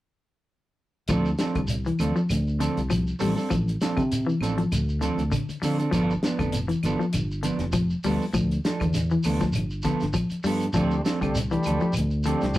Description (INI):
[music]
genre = afrobeat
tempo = 99 BPM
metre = 4/4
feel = swing 54% on 16ths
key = D dorian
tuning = A4 = 440 Hz
[part]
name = clean electric guitar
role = arpeggios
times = 1.1-12.6 s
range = D3 to G3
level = -27 LUFS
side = left 2 dB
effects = none
[part]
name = mellow electric guitar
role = stabs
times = 1.1-12.5 s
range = F3 to A4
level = -28 LUFS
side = right 3 dB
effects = none
[part]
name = fingered electric bass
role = bass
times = 1.1-12.6 s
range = F1 to D3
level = -27 LUFS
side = equal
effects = none
[part]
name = damped 70s drum kit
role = drums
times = 1.1-12.6 s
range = hi-hat, kick drum, snare drum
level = -32 LUFS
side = equal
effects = none
[part]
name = claves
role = percussion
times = 1.1-12.6 s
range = none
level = -41 LUFS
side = left 2 dB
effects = none
[part]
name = shekere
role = percussion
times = 1.1-12.6 s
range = none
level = -33 LUFS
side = right 1 dB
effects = none
[part]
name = overdriven combo organ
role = accompaniment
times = 10.7-12.6 s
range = A3 to C5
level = -30 LUFS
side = equal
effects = none
[sound]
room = moderate small room reverb, RT60 0.6 s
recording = rough rehearsal-room recording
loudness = -22 LUFS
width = side -15 dB against mid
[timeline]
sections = 1.1-12.6 A section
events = none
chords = 1.1 Dm7; 5.9 G9; 10.8 Dm7